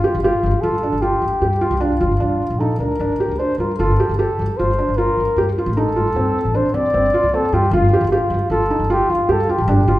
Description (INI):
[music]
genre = contemporary instrumental, chamber music in an uneven meter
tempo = 153 BPM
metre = 5/4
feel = straight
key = unclear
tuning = A4 = 439 Hz
[part]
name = breathy flugelhorn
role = melody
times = 0.0-10.0 s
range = F4 to D5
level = -19 LUFS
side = left 1 dB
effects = none
[part]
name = felt-muted upright piano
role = arpeggios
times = 0.0-10.0 s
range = C4 to G4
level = -20 LUFS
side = right 1 dB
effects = none
[part]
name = upright bass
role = bass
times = 0.1-10.0 s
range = G1 to G2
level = -20 LUFS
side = equal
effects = none
[sound]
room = wet recital hall reverb, RT60 1.7 s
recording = heard from further back in the room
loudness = -15 LUFS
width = side -16 dB against mid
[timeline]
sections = 0.0-10.0 A section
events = none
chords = 0.0 Gm7; 3.8 F/G